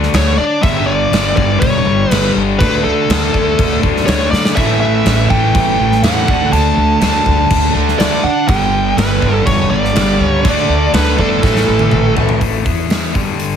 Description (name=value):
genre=hard rock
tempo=122 BPM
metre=4/4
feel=straight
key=unclear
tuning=A4 = 441 Hz
part: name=overdriven electric guitar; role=riff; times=0.0-13.6 s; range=G2 to E4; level=-19 LUFS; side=left 9 dB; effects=none
part: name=sludgy distorted guitar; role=riff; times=0.0-12.4 s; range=G2 to D4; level=-20 LUFS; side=right 1 dB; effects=overdrive
part: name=upright bass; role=bass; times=0.0-13.6 s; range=E1 to D3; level=-18 LUFS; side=equal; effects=none
part: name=gated 80s drum kit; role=drums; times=0.0-13.5 s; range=crash cymbal, hi-hat, kick drum, snare drum, toms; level=-17 LUFS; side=equal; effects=none
part: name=bluesy overdriven lead guitar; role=melody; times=0.2-12.1 s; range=A4 to A5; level=-17 LUFS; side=equal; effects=distortion, tape echo
part: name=crunchy overdriven guitar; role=riff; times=4.6-12.4 s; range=G2 to D4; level=-19 LUFS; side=right 12 dB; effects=none
room=light reverb, small room reverb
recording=heavily compressed radio sound, multiband compression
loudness=-11 LUFS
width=side -8 dB against mid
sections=0.0-12.4 A section; 12.4-13.6 B section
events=drum fill 4.3, 11.4-12.4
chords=0.0 D5; 0.6 G5; 2.6 D5; 4.6 A5; 6.3 D5; 8.5 G; 10.5 D5; 11.4 A5; 12.7 E5